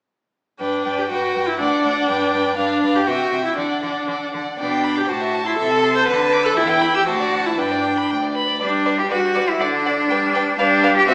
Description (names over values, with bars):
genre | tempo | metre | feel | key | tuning
quick classical-period movement for string quartet | 120 BPM | 2/4 | straight | G major | A4 = 440 Hz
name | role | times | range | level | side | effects
rich violin | melody | 0.6-11.1 s | D5 to B5 | -28 LUFS | equal | none
rich violin | second line | 0.6-11.1 s | B4 to F#6 | -27 LUFS | equal | none
clear viola | accompaniment | 0.6-11.1 s | D3 to C5 | -22 LUFS | equal | none
bright cello | bass | 0.6-11.1 s | D2 to G4 | -24 LUFS | equal | none
room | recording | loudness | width
wet recital hall reverb, RT60 1.6 s | recorded in a church or concert hall, small speaker sound | -19 LUFS | mono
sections
0.6-8.6 A section; 8.6-11.1 A section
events
none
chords
0.6 G; 1.6 D; 2.1 G; 3.1 C; 3.6 D; 4.6 G/B; 5.1 Am; 5.6 Am/C; 6.1 D; 6.6 Em; 7.1 D7; 7.6 G; 9.6 N.C.; 10.1 G5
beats
| 0.59 1.10 | 1.60 2.09 | 2.58 3.07 | 3.57 4.08 | 4.59 5.09 | 5.58 6.08 | 6.57 7.07 | 7.58 8.10 | 8.61 9.11 | 9.61 10.11 | 10.59 11.09